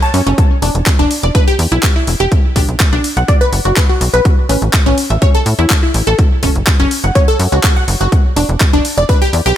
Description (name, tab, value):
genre	progressive house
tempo	124 BPM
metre	4/4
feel	straight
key	E dorian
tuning	A4 = 440 Hz
part	wide unison pluck	arpeggios	0.0-9.5 s	C#4 to A5	-16 LUFS	equal	sidechain pumping, ping-pong delay
part	deep house drum kit	drums	0.0-9.6 s	handclaps, hi-hat	-18 LUFS	equal	none
part	tight sequencer bass	bass	0.1-9.5 s	E1 to A2	-14 LUFS	equal	sidechain pumping
part	electronic kick drum	drums	0.4-9.2 s	none	-12 LUFS	equal	overdrive
room	digital ambience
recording	none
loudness	-10 LUFS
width	side -11 dB against mid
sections	0.0-9.6 A section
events	none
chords	0.4 E7(no3); 2.3 Bm; 4.3 A; 6.2 F#5; 8.1 E7(no3)